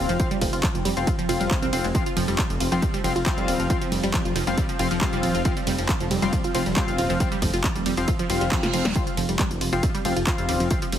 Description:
driving peak-time techno; 137 BPM; 4/4; straight; A4 = 440 Hz
wide unison pluck; riff; 0.0-11.0 s; F3 to F4; -28 LUFS; right 1 dB; auto-pan, sidechain pumping, ping-pong delay
sync-sweep polysynth; stabs; 0.0-10.8 s; C4 to F5; -28 LUFS; left 4 dB; chorus, sidechain pumping, tape echo
detuned saw bass; bass; 0.0-11.0 s; Eb1 to C2; -28 LUFS; equal; tube saturation, sidechain pumping
swarming drone; drone; 0.0-11.0 s; F3 to C4; -32 LUFS; right 2 dB; built-in reverb, sidechain pumping
techno drum kit; drums; 0.1-11.0 s; handclaps, hi-hat, ride cymbal, snare drum; -29 LUFS; right 1 dB; overdrive, small room ambience
electronic kick drum; drums; 0.2-10.8 s; -25 LUFS; equal; overdrive, small room ambience
reverse cymbal; sound effects; 8.3-9.0 s; -35 LUFS; right 8 dB
light reverb; heavily compressed radio sound, multiband compression; -21 LUFS; side -10 dB against mid
0.0-11.0 A section
reverse cymbal 8.3-9.0; drum fill 8.6-9.0
0.0 F5

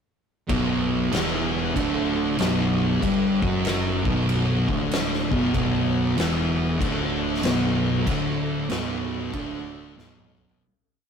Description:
stoner and doom metal; 95 BPM; 4/4; swing 64% on 8ths; B minor; A4 = 437 Hz
thick fuzz guitar; riff; 0.5-10.6 s; B1 to G3; -28 LUFS; left 9 dB; distortion
thick fuzz guitar; riff; 0.5-10.6 s; B1 to G3; -25 LUFS; right 5 dB; distortion
thick fuzz guitar; riff; 0.5-10.6 s; B1 to G3; -32 LUFS; left 3 dB
growling picked electric bass; bass; 0.5-10.6 s; B0 to G1; -32 LUFS; left 1 dB; overdrive
oversized low-tuned drum kit; drums; 0.5-10.6 s; crash cymbal, kick drum, snare drum, toms; -28 LUFS; left 1 dB
moderate studio reverb, RT60 0.6 s; rough rehearsal-room recording, warm saturation; -21 LUFS; side -7 dB against mid
0.5-10.6 riff
fade-out 8.1-10.6; drum fill 10.0-10.6
0.5 Bm

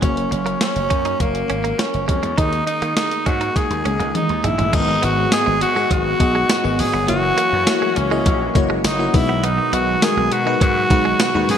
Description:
1980s-style pop; 102 BPM; 4/4; straight; G# minor; A4 = 440 Hz
raspy tenor saxophone; melody; 0.0-11.6 s; A#3 to G#4; -20 LUFS; equal; ping-pong delay
FM electric piano; accompaniment; 0.0-11.6 s; G#2 to F#5; -24 LUFS; left 3 dB; chorus
phased analog pad; sustained chords; 0.0-11.6 s; D#3 to F#4; -26 LUFS; equal; phaser, chorus
direct-recorded clean electric guitar; riff; 0.0-11.4 s; F#3 to D#4; -28 LUFS; right 6 dB; analog chorus
gritty slap bass; bass; 0.0-11.6 s; F#1 to D#3; -24 LUFS; equal; overdrive
clean 12-bit digital drum machine; drums; 0.0-11.6 s; crash cymbal, hi-hat, kick drum, snare drum, tambourine, toms; -21 LUFS; equal
moderate plate reverb, RT60 1.9 s, digital ambience; bright 1980s-style digital production; -16 LUFS; side -8 dB against mid
0.0-4.7 A section; 4.7-11.6 B section
drum fill 3.6-4.7
0.0 F#; 2.4 D#sus4; 4.7 G#m7; 7.1 F#7; 9.1 B6

